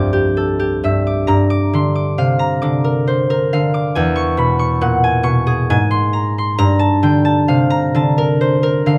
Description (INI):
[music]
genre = classical, solo harp piece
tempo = 67 BPM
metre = 3/4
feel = rubato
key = unclear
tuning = A4 = 440 Hz
[part]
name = concert harp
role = solo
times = 0.0-9.0 s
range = C2 to D6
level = -16 LUFS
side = equal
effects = none
[sound]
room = light reverb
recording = close, detailed microphones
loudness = -16 LUFS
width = mono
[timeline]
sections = 0.0-9.0 A section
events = none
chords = 0.0 Cadd9; 1.3 Gm7; 4.0 E69; 5.7 Ab; 6.6 Gm9